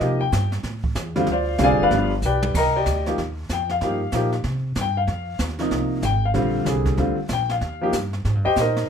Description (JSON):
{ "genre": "jazz piano trio", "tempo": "189 BPM", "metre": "4/4", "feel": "swing 63% on 8ths", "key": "C minor", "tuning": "A4 = 441 Hz", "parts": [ { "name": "warm concert grand piano", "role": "melody", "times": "0.0-8.9 s", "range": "C3 to Bb5", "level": "-21 LUFS", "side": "left 1 dB", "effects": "none" }, { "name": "upright bass", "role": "bass", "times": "0.0-8.9 s", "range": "F1 to C3", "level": "-25 LUFS", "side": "equal", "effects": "none" }, { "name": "jazz brush drum kit", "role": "drums", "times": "0.0-8.9 s", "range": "brushed snare drum, crash cymbal, hi-hat, kick drum, snare drum, toms", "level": "-29 LUFS", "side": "right 2 dB", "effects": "none" } ], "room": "light reverb", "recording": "minimal, uncompressed stereo recording", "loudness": "-20 LUFS", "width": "side -7 dB against mid", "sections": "0.0-2.5 A section; 2.5-8.9 A section", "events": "grand piano solo 0.0-8.9; drum fill 2.2-2.5", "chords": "0.0 Cm7; 0.6 A5; 1.3 Dm7b5; 1.9 G7; 2.5 Cm9; 3.8 Gm7; 4.4 C5; 5.1 Fm7; 6.3 Bb13; 7.6 Eb69" }